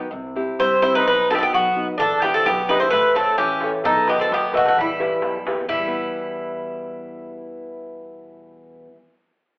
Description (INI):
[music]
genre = greek folk, Greek bouzouki band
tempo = 130 BPM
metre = 2/4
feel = straight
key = E harmonic minor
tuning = A4 = 440 Hz
[part]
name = nylon-string guitar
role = accompaniment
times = 0.0-9.1 s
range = E2 to D#5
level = -26 LUFS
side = equal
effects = none
[part]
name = upright bass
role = bass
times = 0.1-9.0 s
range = A1 to G2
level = -40 LUFS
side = equal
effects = none
[part]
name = Greek bouzouki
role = melody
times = 0.6-9.0 s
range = E4 to C5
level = -19 LUFS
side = equal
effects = none
[part]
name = Greek bouzouki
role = second line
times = 0.6-9.0 s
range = G3 to E4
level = -24 LUFS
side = equal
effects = none
[part]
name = darbuka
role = percussion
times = 2.0-5.9 s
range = none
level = -31 LUFS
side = equal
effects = none
[sound]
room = wet large studio reverb, RT60 0.8 s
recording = band playing live in one room, telephone sound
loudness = -17 LUFS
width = side -24 dB against mid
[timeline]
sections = 0.0-5.7 A section; 5.7-7.5 B section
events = speeding up 0.0-7.5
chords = 0.1 C; 1.1 B; 2.0 Em7; 2.9 A; 3.9 B; 4.8 Em